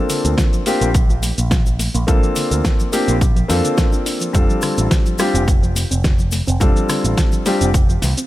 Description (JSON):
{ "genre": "nu-disco, nu disco", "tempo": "106 BPM", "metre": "4/4", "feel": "swing 53% on 16ths", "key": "F major", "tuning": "A4 = 440 Hz", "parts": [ { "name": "dark grand piano", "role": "accompaniment", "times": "0.0-7.7 s", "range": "G3 to A4", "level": "-20 LUFS", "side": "left 1 dB", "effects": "sidechain pumping, tape echo" }, { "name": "soft round pluck", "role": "arpeggios", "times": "0.0-8.3 s", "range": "D3 to D4", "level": "-27 LUFS", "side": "equal", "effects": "chorus, sidechain pumping, tape echo" }, { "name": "pop drum kit", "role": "drums", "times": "0.1-8.3 s", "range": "cabasa, hi-hat, rim click, snare drum", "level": "-24 LUFS", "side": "equal", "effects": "none" }, { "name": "cabasa", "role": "percussion", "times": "0.1-8.3 s", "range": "none", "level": "-31 LUFS", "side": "left 4 dB", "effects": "none" }, { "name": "picked electric bass with an envelope filter", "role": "bass", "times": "0.2-8.1 s", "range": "F1 to F2", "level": "-19 LUFS", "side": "equal", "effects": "none" }, { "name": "electronic kick drum", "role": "drums", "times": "0.4-7.9 s", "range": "none", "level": "-16 LUFS", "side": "equal", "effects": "none" } ], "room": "little or no reverb", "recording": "none", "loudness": "-14 LUFS", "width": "side -15 dB against mid", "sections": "0.0-8.3 A section", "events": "none", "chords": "0.0 Bbmaj7; 4.3 F6" }